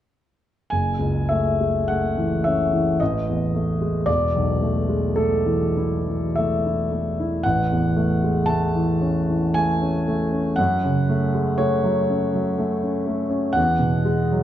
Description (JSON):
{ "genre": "classical, impressionist solo piano", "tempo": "48-62 BPM", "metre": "3/4", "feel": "rubato", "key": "F# minor", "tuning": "A4 = 440 Hz", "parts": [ { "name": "clear grand piano", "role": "solo", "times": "0.7-14.4 s", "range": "E1 to A5", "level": "-19 LUFS", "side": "equal", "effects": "none" } ], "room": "moderate recital hall reverb, RT60 1.4 s", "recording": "minimal, uncompressed stereo recording", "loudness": "-19 LUFS", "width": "side -11 dB against mid", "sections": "0.7-14.4 A section", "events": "none", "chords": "0.7 F#m9; 3.0 A5; 4.1 E7sus4; 7.4 A6; 10.6 F#madd9; 13.6 Eadd9" }